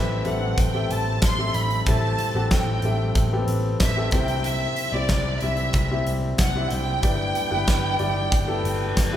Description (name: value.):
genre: piano-driven pop.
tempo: 93 BPM.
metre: 4/4.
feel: straight.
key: unclear.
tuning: A4 = 440 Hz.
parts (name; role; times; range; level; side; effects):
warm studio violin section; melody; 0.0-9.2 s; D5 to C6; -27 LUFS; right 2 dB; none.
clear concert grand piano; accompaniment; 0.0-9.2 s; G2 to G5; -27 LUFS; left 3 dB; none.
vintage muted picked electric bass; bass; 0.0-9.2 s; G1 to C2; -26 LUFS; equal; none.
huge arena drum kit; drums; 0.2-9.1 s; hi-hat, kick drum, snare drum; -25 LUFS; equal; none.
reverse cymbal; sound effects; 8.6-9.2 s; none; -33 LUFS; left 2 dB; none.
room: wet large studio reverb, RT60 1.3 s.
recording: band playing live in one room.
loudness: -20 LUFS.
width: side -11 dB against mid.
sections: 0.0-9.2 A section.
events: reverse cymbal 8.6-9.2.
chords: 0.0 Am7; 4.1 C; 7.0 G6.